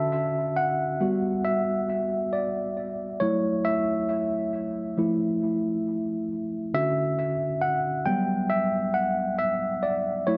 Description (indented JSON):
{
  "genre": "R&B",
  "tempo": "68 BPM",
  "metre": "4/4",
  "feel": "swing 57% on 16ths",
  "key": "unclear",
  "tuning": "A4 = 440 Hz",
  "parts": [
    { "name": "tine electric piano", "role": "solo", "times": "0.0-10.4 s", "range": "D3 to A5", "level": "-26 LUFS", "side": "equal", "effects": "overdrive, analog delay" }
  ],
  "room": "moderate echo chamber reverb, RT60 1.7 s",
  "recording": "echo-heavy mix",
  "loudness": "-26 LUFS",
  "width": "mono",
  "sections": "0.0-10.4 A section",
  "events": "tine electric piano solo 0.0-10.4",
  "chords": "0.0 Dmaj9; 1.0 Gmaj7; 3.2 F#m7; 5.0 Fmaj7; 6.7 Dmaj9; 8.1 Gmaj7"
}